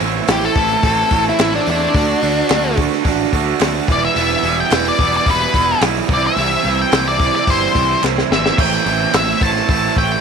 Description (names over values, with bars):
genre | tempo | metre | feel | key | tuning
indie rock | 108 BPM | 4/4 | straight | unclear | A4 = 440 Hz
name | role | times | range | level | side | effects
raw garage guitar | riff | 0.0-10.2 s | A2 to F#4 | -18 LUFS | right 14 dB | overdrive
fuzz picked electric bass | bass | 0.0-10.2 s | E1 to E2 | -22 LUFS | left 1 dB | overdrive
compact cocktail drum kit | drums | 0.0-10.1 s | crash cymbal, hi-hat, kick drum, snare drum | -19 LUFS | left 2 dB | none
octave-fuzz lead guitar | melody | 0.3-10.2 s | D4 to A5 | -18 LUFS | left 5 dB | distortion
group handclap | percussion | 0.3-9.3 s | none | -27 LUFS | right 14 dB | none
room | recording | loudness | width
light reverb | 1960s-style stereo | -13 LUFS | side -6 dB against mid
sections
0.0-10.2 A section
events
lead electric guitar solo 0.0-10.2; drum fill 8.0-8.6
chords
0.0 Am; 1.9 D; 3.9 Em; 6.1 C; 8.6 Am